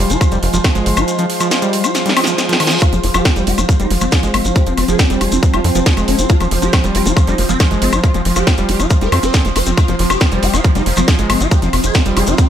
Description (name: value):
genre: psychedelic trance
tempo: 138 BPM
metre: 4/4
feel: straight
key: F minor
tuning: A4 = 444 Hz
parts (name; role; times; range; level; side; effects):
- overtone-sweeping drone; sustained chords; 0.0-12.5 s; F3 to Eb4; -23 LUFS; right 2 dB; chorus, built-in reverb, sidechain pumping
- overdriven acid bass; riff; 0.0-12.3 s; Eb3 to F4; -21 LUFS; moving between left 4 dB and right 3 dB; distortion, auto-pan, sidechain pumping, tape echo
- tight sequencer bass; bass; 0.0-12.3 s; F1 to F2; -18 LUFS; equal; none
- airy breathy pad; texture; 0.0-12.5 s; F4 to C6; -24 LUFS; equal; chorus, sidechain pumping
- drum and bass drum kit; drums; 0.1-12.5 s; hi-hat, snare drum, woodblock; -19 LUFS; left 1 dB; overdrive, small room reverb
- shekere; percussion; 0.1-12.5 s; none; -26 LUFS; left 2 dB; none
- electronic kick drum; drums; 0.2-12.5 s; none; -12 LUFS; equal; overdrive, small room reverb
- reverse cymbal; sound effects; 2.2-2.8 s; none; -22 LUFS; right 1 dB; none
- swarming rave lead; melody; 2.8-12.5 s; F3 to C5; -20 LUFS; equal; chorus, phaser, sidechain pumping, digital delay
room: light reverb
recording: none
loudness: -12 LUFS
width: side -10 dB against mid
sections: 0.0-12.5 A section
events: drum fill 1.9-2.8; reverse cymbal 2.2-2.8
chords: 0.0 F5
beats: 0.21 0.64 | 1.08 1.51 1.95 2.38 | 2.82 3.25 3.69 4.12 | 4.56 4.99 5.43 5.86 | 6.30 6.73 7.17 7.60 | 8.04 8.47 8.90 9.34 | 9.78 10.21 10.64 11.08 | 11.51 11.95 12.38